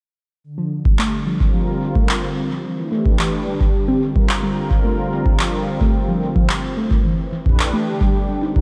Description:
IDM; 109 BPM; 4/4; straight; G minor; A4 = 441 Hz
warm analog pad; sustained chords; 0.4-8.6 s; D3 to B4; -26 LUFS; equal; chorus
harp-like synth pluck; arpeggios; 0.6-8.6 s; E3 to Eb4; -26 LUFS; equal; chorus, digital delay
electronic kick drum; drums; 0.9-8.6 s; -20 LUFS; equal
electronic handclaps; drums; 1.0-7.7 s; -28 LUFS; equal; tape echo
light reverb, digital ambience; dark, warm production; -19 LUFS; mono
0.4-8.6 A section
0.4 Gm7; 2.6 Am9; 3.5 Csus2; 4.8 Gm9; 7.0 Am9; 7.9 Cm9

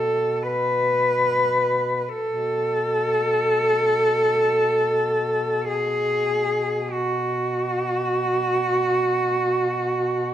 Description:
caucasian folk, Caucasian lament; free time; A4 = 442 Hz
rich cello; melody; 0.0-10.3 s; F#4 to B4; -20 LUFS; equal
mellow duduk; drone; 0.0-10.3 s; B2; -30 LUFS; equal
wet recital hall reverb, RT60 1.4 s; -20 LUFS; side -11 dB against mid
0.0-10.3 A section

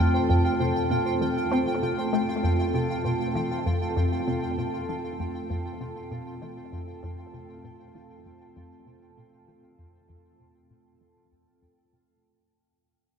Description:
ambient, sequencer-driven space music; 98 BPM; 4/4; straight; F major; A4 = 441 Hz
sweeping resonant pad; sustained chords; 0.0-12.2 s; A3 to A5; -29 LUFS; equal; chorus
mellow electric guitar; arpeggios; 0.0-12.2 s; F4 to F5; -37 LUFS; left 2 dB; auto-pan, tape echo
resonant blip pluck; riff; 0.0-12.1 s; F2 to C4; -28 LUFS; left 1 dB; phaser, ensemble chorus, tape echo
pulsing gated texture; texture; 0.0-12.2 s; G5; -34 LUFS; right 3 dB; chorus, built-in reverb
wet cathedral reverb, RT60 6.1 s; in a vast, echoing space; -24 LUFS; side -7 dB against mid
0.0-12.2 A section
fade-out on clean electric guitar 0.0-12.2; fade-out 0.0-12.2; filter sweep on synth arpeggio sound 0.0-12.2
0.0 F

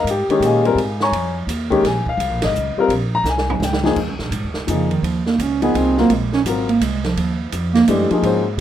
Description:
modal jazz; 169 BPM; 3/4; swing 64% on 8ths; Eb dorian from 4.0 s; A4 = 441 Hz
warm upright piano; accompaniment; 0.0-8.6 s; Eb3 to Db6; -18 LUFS; left 4 dB
upright bass; bass; 0.0-8.6 s; Ab1 to Bb2; -23 LUFS; right 1 dB
open jazz drum kit; drums; 0.1-8.3 s; crash cymbal, hi-hat, kick drum, ride cymbal, snare drum, toms; -26 LUFS; right 4 dB
breathy bass clarinet; second line; 4.7-8.4 s; Db3 to Db4; -18 LUFS; right 4 dB
moderate studio reverb, RT60 0.7 s; -16 LUFS; side -11 dB against mid
0.0-4.0 A section; 4.0-8.6 A section
drum fill 3.3-4.0; bass clarinet solo 4.0-8.6
0.0 Eb9sus4; 4.0 Eb13sus4

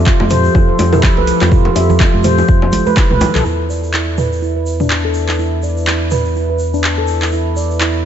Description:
afro house; 124 BPM; 4/4; swing 58% on 16ths; E phrygian; A4 = 439 Hz
dark analog pad; sustained chords; 0.0-8.1 s; F3 to E5; -21 LUFS; left 1 dB; chorus, sidechain pumping
round analog bass; bass; 0.0-8.1 s; F1 to F2; -17 LUFS; equal; sidechain pumping
handpan; arpeggios; 0.1-7.9 s; D4 to E5; -18 LUFS; right 2 dB; vintage 12-bit sampler grit, sidechain pumping, low-pass filter, ping-pong delay
deep house drum kit; drums; 0.1-7.9 s; handclaps, hi-hat, toms; -19 LUFS; equal; overdrive
electronic kick drum; drums; 0.1-3.1 s; -12 LUFS; equal; overdrive
egg shaker; percussion; 0.1-7.9 s; -34 LUFS; right 2 dB
bongos; percussion; 0.2-3.3 s; -23 LUFS; left 4 dB
congas; percussion; 0.2-3.4 s; -21 LUFS; right 3 dB
light reverb, small room ambience; nothing above 7.9 kHz; -11 LUFS; side -9 dB against mid
0.0-3.5 A section; 3.5-8.1 B section
drum fill 3.1-3.5; filter sweep on handpan 3.5-8.1
0.0 Fadd9; 3.5 E7(no3)

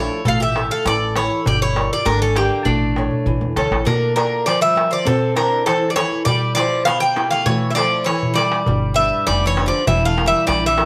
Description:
greek folk, Greek bouzouki band; 100 BPM; 2/4; straight; A4 = 440 Hz
Greek bouzouki; melody; 0.0-10.9 s; D4 to G5; -21 LUFS; equal
Greek bouzouki; second line; 0.0-10.9 s; C3 to A4; -27 LUFS; equal; slapback echo
flamenco guitar; accompaniment; 0.0-10.9 s; B2 to E5; -27 LUFS; equal
upright bass; bass; 0.0-3.8, 8.7-10.9 s; E1 to E2; -25 LUFS; equal
darbuka; percussion; 0.1-10.9 s; -25 LUFS; equal
moderate studio reverb, RT60 0.5 s; -18 LUFS; mono
0.0-3.9 A section; 3.9-10.9 B section
drum fill 3.1-3.9, 8.2-8.7
0.3 A; 1.5 Gm; 2.7 A; 3.9 Bb; 5.1 Am; 6.3 Em; 7.5 A5; 8.7 G; 9.9 Edim

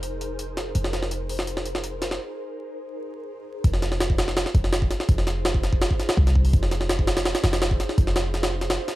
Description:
drum and bass, jungle; 166 BPM; 4/4; straight; F minor; A4 = 440 Hz
ethereal airy pad; sustained chords; 0.0-9.0 s; Eb4 to C5; -34 LUFS; right 1 dB; ensemble chorus, built-in reverb, vintage 12-bit sampler grit
warm 808-style bass; bass; 0.0-8.8 s; F1 to C2; -24 LUFS; equal; tube saturation
jungle sampler-style drum kit; drums; 0.0-9.0 s; hi-hat, kick drum, snare drum; -23 LUFS; equal; small room ambience
digital ambience; vinyl crackle; -21 LUFS; side -16 dB against mid
0.0-3.6 A section; 3.6-9.0 B section
break 2.2-3.6; drop 3.6-9.0
0.0 Abadd9/F; 3.6 Fm7

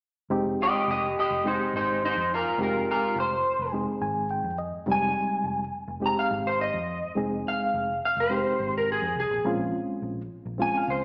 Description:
straight-eighth soul blues; 105 BPM; 4/4; straight; F minor; A4 = 439 Hz
reed electric piano; accompaniment; 0.3-11.0 s; G3 to Ab5; -32 LUFS; equal; fast tremolo, plate reverb
vintage muted fingered electric bass; bass; 0.3-11.0 s; F1 to F2; -40 LUFS; equal
electric guitar through a small old amp; melody; 0.6-11.0 s; Eb4 to Bb5; -28 LUFS; equal; analog chorus, slapback echo, plate reverb
moderate club reverb, RT60 0.6 s; live gig heard through the venue's PA, recital hall reverb, small speaker sound; -27 LUFS; mono
0.3-11.0 A section
reed electric piano fill 3.7-4.9
0.3 Fm9; 9.4 Bbm9

